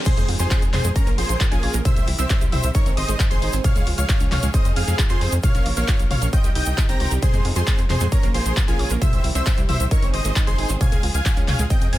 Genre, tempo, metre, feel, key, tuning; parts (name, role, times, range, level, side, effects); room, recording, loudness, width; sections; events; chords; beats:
uplifting trance; 134 BPM; 4/4; straight; F minor; A4 = 441 Hz
reverse cymbal and impact; sound effects; 0.0-1.9 s; -35 LUFS; left 1 dB
dense compressed supersaw; melody; 0.1-12.0 s; Db4 to Bb5; -28 LUFS; equal; sidechain pumping, ping-pong delay
supersaw stab; second line; 0.1-12.0 s; Ab5 to Bb6; -32 LUFS; equal; sidechain pumping, tape echo
clear studio string section; sustained chords; 0.1-12.0 s; C3 to Bb4; -33 LUFS; left 1 dB; sidechain pumping
analog pluck; arpeggios; 0.1-12.0 s; F3 to Db5; -31 LUFS; right 5 dB; chorus, sidechain pumping, tape echo
big-room dance drum kit; drums; 0.1-12.0 s; crash cymbal, handclaps, hi-hat, toms; -27 LUFS; left 1 dB; studio reverb
electronic kick drum; drums; 0.1-11.8 s; -19 LUFS; equal; high-pass filter on kick, studio reverb
egg shaker; percussion; 0.1-11.9 s; -34 LUFS; right 3 dB
tight sequencer bass; bass; 0.2-12.0 s; G1 to F2; -23 LUFS; equal; sidechain pumping
little or no reverb; -17 LUFS; side -15 dB against mid
0.1-12.0 A section
drop 0.1-12.0; impact 0.1-1.9
0.1 Fm7; 1.0 Bbm; 1.9 C; 2.7 Ab; 3.6 Db; 4.5 Fm7; 5.4 Bbm; 6.3 Cm; 7.2 Fm7; 8.1 Bbm; 9.0 C; 9.9 Ab; 10.8 Db
| 0.06 0.51 0.96 1.41 | 1.85 2.30 2.75 3.20 | 3.64 4.09 4.54 4.99 | 5.43 5.88 6.33 6.78 | 7.23 7.67 8.12 8.57 | 9.02 9.46 9.91 10.36 | 10.81 11.26 11.70